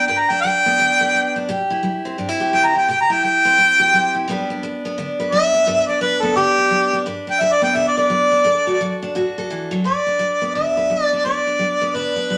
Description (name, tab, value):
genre	country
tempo	172 BPM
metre	4/4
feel	swing 60% on 8ths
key	G major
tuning	A4 = 438 Hz
part	warm harmonica	melody	0.0-12.4 s	G4 to Bb5	-18 LUFS	equal	none
part	picked steel-string acoustic guitar	accompaniment	0.0-12.4 s	G2 to B4	-24 LUFS	equal	none
room	wet studio reverb, RT60 0.6 s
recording	none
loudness	-18 LUFS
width	mono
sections	0.0-9.8 A section; 9.8-12.4 B section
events	harmonica solo 0.0-9.8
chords	0.0 G; 1.5 C; 4.3 G; 8.5 D; 9.8 G